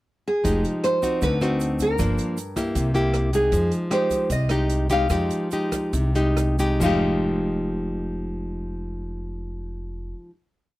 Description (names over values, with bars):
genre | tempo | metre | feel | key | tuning
bossa nova | 132-156 BPM | 4/4 | straight | F minor | A4 = 438 Hz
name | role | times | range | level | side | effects
nylon-string guitar | melody | 0.3-10.1 s | Ab4 to F5 | -24 LUFS | equal | none
nylon-string guitar | accompaniment | 0.4-10.4 s | G2 to G4 | -24 LUFS | equal | none
upright bass | bass | 0.4-10.1 s | F1 to F2 | -26 LUFS | equal | none
open jazz drum kit | drums | 0.4-6.9 s | china cymbal, hi-hat, kick drum, rim click, toms | -31 LUFS | equal | none
egg shaker | percussion | 0.5-6.9 s | none | -41 LUFS | right 11 dB | none
room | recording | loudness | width
little or no reverb | dry, close 1970s-style studio recording | -20 LUFS | side -17 dB against mid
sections
0.0-0.4 pickup bar; 0.4-6.8 A section; 6.8-10.5 final chord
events
slowing down 3.5-6.8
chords
0.4 Fm9; 1.2 D7b9; 2.0 Gm7; 2.8 C7; 3.5 Fm9